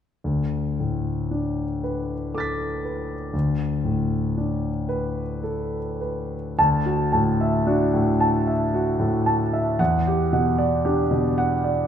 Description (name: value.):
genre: classical, impressionist solo piano.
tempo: 57 BPM.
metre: 3/4.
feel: uneven beats, rubato.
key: D major.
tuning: A4 = 440 Hz.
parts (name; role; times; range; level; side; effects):
clear concert grand piano; solo; 0.2-11.9 s; D2 to B6; -21 LUFS; equal; none.
room: moderate scoring stage reverb, RT60 2.0 s.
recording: none.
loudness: -21 LUFS.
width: side -8 dB against mid.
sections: 0.2-6.6 A section; 6.6-11.9 B section.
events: none.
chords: 0.2 D5; 6.6 Dadd9; 9.8 Em9.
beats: | 0.24 1.31 2.33 | 3.33 4.36 5.43 | 6.57 7.66 8.73 | 9.79 10.86.